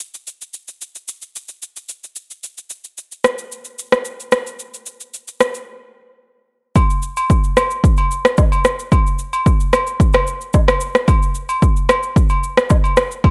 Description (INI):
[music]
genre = amapiano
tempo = 111 BPM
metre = 4/4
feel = straight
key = none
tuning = none
[part]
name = deep house drum kit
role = drums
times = 0.0-13.3 s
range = kick drum, rim click, shaker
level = -17 LUFS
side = equal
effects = overdrive
[part]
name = agogo bells and woodblock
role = percussion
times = 6.8-13.3 s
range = none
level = -24 LUFS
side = equal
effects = none
[sound]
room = digital ambience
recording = dry, gritty hardware recording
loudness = -16 LUFS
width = mono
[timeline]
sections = 0.0-6.8 A section; 6.8-13.3 B section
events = break 5.7-6.8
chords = none